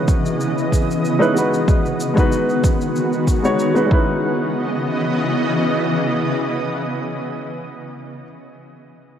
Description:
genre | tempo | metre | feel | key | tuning
sunset chillout | 94 BPM | 4/4 | swing 54% on 16ths | C# minor | A4 = 440 Hz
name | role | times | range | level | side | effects
warm baby grand piano | accompaniment | 0.0-8.3 s | G#3 to C#5 | -21 LUFS | equal | auto-pan, tape echo
shimmering ambient pad | sustained chords | 0.0-7.5 s | C#3 to D#5 | -20 LUFS | equal | chorus, built-in reverb
electronic kick drum | drums | 0.1-4.0 s | none | -17 LUFS | equal | overdrive
shaker | drums | 0.1-3.9 s | none | -36 LUFS | equal | overdrive
room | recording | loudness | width
moderate lush hall reverb, RT60 2.4 s | worn, warbling old tape, cassette tape, warbly pitch drift | -16 LUFS | side -9 dB against mid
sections
0.0-4.2 A section; 4.2-6.8 B section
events
none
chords
0.0 C#m9; 1.7 G#m7; 3.9 C#m9

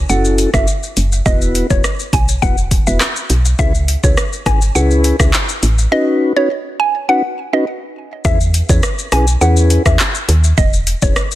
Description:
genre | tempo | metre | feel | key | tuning
dancehall | 103 BPM | 4/4 | straight | unclear | A4 = 440 Hz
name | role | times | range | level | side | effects
woody FM bass | bass | 0.0-11.1 s | E1 to E2 | -14 LUFS | equal | none
mallet-like synth pluck | melody | 0.1-11.1 s | C#5 to G#5 | -20 LUFS | right 1 dB | chorus, phaser, digital delay
mellow tonewheel organ | accompaniment | 0.1-11.1 s | B3 to B4 | -20 LUFS | left 2 dB | slow rotary speaker, sidechain pumping
afro-pop drum kit | drums | 0.1-11.4 s | handclaps, hi-hat, kick drum, rim click, shaker | -15 LUFS | equal | overdrive
room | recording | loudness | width
digital ambience | dense, heavily limited modern master | -12 LUFS | side -15 dB against mid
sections
0.0-8.2 A section; 8.2-11.4 B section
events
break 5.9-8.2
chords
0.0 F#m7; 1.3 Esus2; 3.6 C#m7; 5.9 Badd9; 8.2 E6

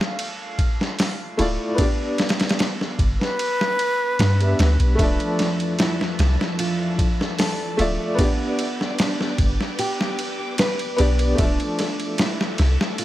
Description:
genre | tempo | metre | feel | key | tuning
trip hop | 75 BPM | 4/4 | straight | D dorian | A4 = 438 Hz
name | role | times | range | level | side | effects
bright upright piano | accompaniment | 0.0-13.0 s | F3 to E5 | -26 LUFS | equal | tremolo, tape echo
boom bap sampler-style drum kit | drums | 0.0-13.0 s | hi-hat, kick drum, ride cymbal, snare drum | -23 LUFS | equal | none
soft 808-style bass | bass | 1.4-12.8 s | D1 to G2 | -19 LUFS | equal | tube saturation
bright reedy concert flute | melody | 3.2-4.8 s | B4 | -28 LUFS | equal | tape echo
string machine, cellos | sustained chords | 5.0-13.0 s | F3 to D6 | -28 LUFS | equal | ensemble chorus
nylon-string guitar | arpeggios | 5.0-13.0 s | B3 to B4 | -29 LUFS | right 1 dB | digital delay
room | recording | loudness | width
light reverb | vinyl crackle | -19 LUFS | side -14 dB against mid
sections
0.0-13.0 A section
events
none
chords
0.0 Dmadd9; 1.8 G; 5.0 Dmadd9; 8.2 G; 11.4 Dmadd9

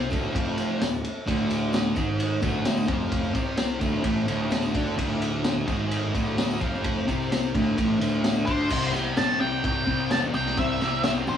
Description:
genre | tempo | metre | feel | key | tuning
garage rock duo or trio | 129 BPM | 4/4 | straight | D minor | A4 = 440 Hz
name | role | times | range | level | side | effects
thick fuzz guitar | riff | 0.0-11.4 s | D2 to D4 | -26 LUFS | equal | distortion
fuzz picked electric bass | bass | 0.0-11.4 s | D1 to D2 | -31 LUFS | equal | overdrive, tube saturation
vintage drum kit | drums | 0.1-11.1 s | crash cymbal, kick drum, ride cymbal, snare drum | -28 LUFS | equal | none
tambourine | percussion | 0.1-11.4 s | none | -48 LUFS | right 4 dB | none
octave-fuzz lead guitar | melody | 8.5-11.4 s | C5 to A5 | -27 LUFS | equal | distortion
room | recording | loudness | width
moderate small room reverb, RT60 0.5 s | rough rehearsal-room recording, small room ambience, faint mains hum | -23 LUFS | side -9 dB against mid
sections
0.0-8.7 A section; 8.7-11.4 B section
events
none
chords
0.0 Dm; 8.7 C5

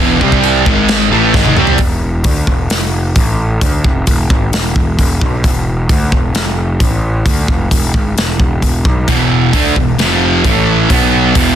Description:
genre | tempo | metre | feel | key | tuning
heavy metal | 132 BPM | 4/4 | straight | E phrygian dominant | A4 = 443 Hz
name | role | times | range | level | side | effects
distorted electric guitar | riff | 0.0-1.8, 9.1-11.6 s | E2 to D4 | -13 LUFS | right 14 dB | distortion
sludgy distorted guitar | riff | 0.0-1.8, 9.1-11.6 s | E2 to D4 | -14 LUFS | left 10 dB | overdrive
fuzz picked electric bass | bass | 0.0-11.6 s | E1 to D2 | -15 LUFS | equal | overdrive
modern studio drum kit | drums | 0.2-11.5 s | china cymbal, hi-hat, kick drum, snare drum, toms | -14 LUFS | equal | none
room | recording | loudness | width
little or no reverb | dense, heavily limited modern master | -10 LUFS | side -10 dB against mid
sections
0.0-1.8 A section; 1.8-11.6 B section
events
drum fill 1.3-1.8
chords
0.2 C5; 0.7 G#5; 1.1 E; 1.8 Dsus2/E; 2.7 N.C.; 7.3 E5; 10.0 F5; 10.4 A5; 10.9 B5

